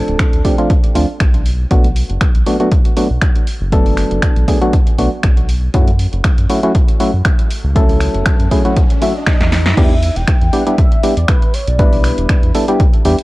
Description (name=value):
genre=deep house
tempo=119 BPM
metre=4/4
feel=swing 54% on 16ths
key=E dorian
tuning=A4 = 440 Hz
part: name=percussive organ stab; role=stabs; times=0.0-13.2 s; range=F3 to B4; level=-17 LUFS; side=equal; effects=chorus, sidechain pumping, tape echo
part: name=round analog bass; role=bass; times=0.0-13.2 s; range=D1 to F#2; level=-16 LUFS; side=equal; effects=sidechain pumping
part: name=punchy analog drum machine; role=drums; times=0.1-13.2 s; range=crash cymbal, finger snaps, hi-hat, snare drum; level=-22 LUFS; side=equal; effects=none
part: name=electronic kick drum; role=drums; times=0.2-12.9 s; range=none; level=-13 LUFS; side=equal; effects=none
part: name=riser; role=sound effects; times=8.0-9.8 s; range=none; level=-28 LUFS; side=equal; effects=none
part: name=warm velvety synth lead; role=melody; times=9.0-12.7 s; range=B4 to G5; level=-23 LUFS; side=left 1 dB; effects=chorus, tape echo
room=little or no reverb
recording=dry, gritty hardware recording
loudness=-11 LUFS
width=side -19 dB against mid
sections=0.0-9.8 A section; 9.8-13.2 B section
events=riser 8.0-9.8; drum fill 9.3-9.8; drop 9.8-13.2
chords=0.0 Dm7; 1.5 Bm7; 5.7 F#m7; 9.8 Em7